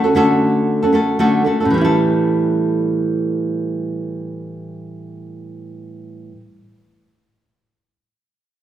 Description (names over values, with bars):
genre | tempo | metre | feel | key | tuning
pop | 116 BPM | 4/4 | swing 60% on 16ths | A mixolydian | A4 = 441 Hz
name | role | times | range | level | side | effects
nylon-string guitar | accompaniment | 0.0-6.5 s | A2 to A4 | -16 LUFS | right 1 dB | none
room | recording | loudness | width
wet recital hall reverb, RT60 1.7 s | recorded in a church or concert hall | -15 LUFS | side -11 dB against mid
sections
0.0-1.7 A section; 1.7-5.9 B section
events
none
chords
0.0 Dmaj7; 1.7 A7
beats
0.15 0.67 1.19 | 1.71 2.23 2.75 3.26 | 3.78 4.30 4.82 5.34